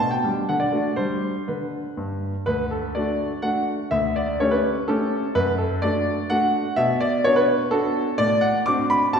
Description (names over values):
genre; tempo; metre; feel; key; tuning
classical-period piano sonatina; 125 BPM; 3/4; rubato; D major; A4 = 440 Hz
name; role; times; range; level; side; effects
clear concert grand piano; solo; 0.0-9.2 s; D2 to D6; -20 LUFS; equal; none
room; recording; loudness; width
wet scoring stage reverb, RT60 1.8 s; recorded in a church or concert hall; -20 LUFS; side -6 dB against mid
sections
0.0-2.5 A section; 2.5-9.2 B section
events
none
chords
0.0 G/B; 0.5 D; 1.0 G; 2.5 D; 3.9 A7/D; 5.4 D/F#; 6.8 Bm; 8.2 D7/A